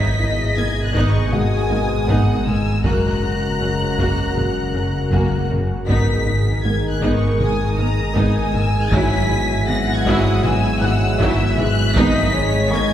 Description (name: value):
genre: cinematic, hybrid orchestral and electronic film score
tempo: 79 BPM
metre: 4/4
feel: straight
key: G# minor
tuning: A4 = 440 Hz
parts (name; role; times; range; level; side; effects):
- warm symphonic violin section; melody; 0.0-12.9 s; C#6 to B6; -27 LUFS; left 2 dB; none
- rich symphonic violin section; second line; 0.0-12.9 s; C#5 to A#5; -27 LUFS; left 2 dB; none
- rich symphonic viola section; accompaniment; 0.0-12.8 s; C#3 to F#4; -25 LUFS; right 1 dB; none
- airy breathy pad; sustained chords; 0.0-12.9 s; B2 to F#5; -27 LUFS; left 1 dB; chorus
- clear trombone section; sustained chords; 0.0-12.9 s; B2 to G#3; -27 LUFS; right 2 dB; none
- dark French horn section; sustained chords; 0.0-12.9 s; G#3 to A#4; -27 LUFS; left 3 dB; none
- rubbery square bass; riff; 0.0-12.9 s; F#2 to G#2; -23 LUFS; equal; none
- punchy sub bass; bass; 0.0-12.9 s; F#1 to G#1; -28 LUFS; equal; none
- felt-muted upright piano; texture; 0.2-12.9 s; E4 to F#6; -33 LUFS; left 2 dB; none
- rich symphonic cello section; bass; 0.6-12.8 s; F#2 to G#2; -28 LUFS; right 1 dB; none
- warm symphonic double bass section; bass; 0.6-12.8 s; F#1 to G#1; -26 LUFS; right 1 dB; none
- solo taiko drums; drums; 0.9-12.7 s; none; -26 LUFS; equal; none
room: wet concert hall reverb, RT60 2.5 s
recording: recorded in a church or concert hall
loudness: -16 LUFS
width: side -11 dB against mid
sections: 0.0-12.9 A section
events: none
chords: 0.0 G#madd9; 2.9 F#; 5.9 G#madd9; 8.9 Eadd9/G#; 12.0 G#m